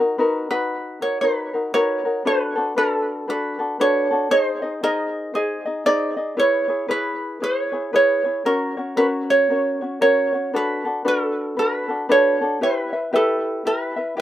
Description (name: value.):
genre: Hawaiian.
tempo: 116 BPM.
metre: 4/4.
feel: swing 61% on 8ths.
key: B minor.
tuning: A4 = 440 Hz.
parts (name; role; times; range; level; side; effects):
ukulele; accompaniment; 0.0-14.2 s; C#4 to E5; -22 LUFS; left 2 dB; none.
ukulele; melody; 0.5-14.2 s; G#4 to D5; -20 LUFS; right 2 dB; slapback echo.
room: little or no reverb.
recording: recorded outdoors, with no room sound.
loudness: -18 LUFS.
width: side -12 dB against mid.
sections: 0.0-2.2 A section; 2.2-14.2 B section.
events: none.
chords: 0.0 Bmaj7; 2.2 Bm7; 4.3 G#; 6.4 C#m7; 8.4 F#; 10.5 Bm7; 12.6 Em.